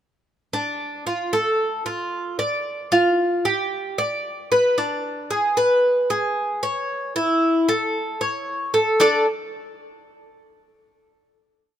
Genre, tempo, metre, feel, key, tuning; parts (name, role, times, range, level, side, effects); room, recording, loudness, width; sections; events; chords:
latin; 113 BPM; 4/4; straight; D harmonic minor; A4 = 440 Hz
Cuban tres; solo; 0.5-9.3 s; D4 to D5; -19 LUFS; equal
moderate plate reverb, RT60 3.3 s; minimal, uncompressed stereo recording; -19 LUFS; side -10 dB against mid
0.5-9.0 verse; 9.0-11.1 final chord
0.5 Dm; 2.7 G5; 4.8 Bm69/D; 6.9 A; 9.0 D5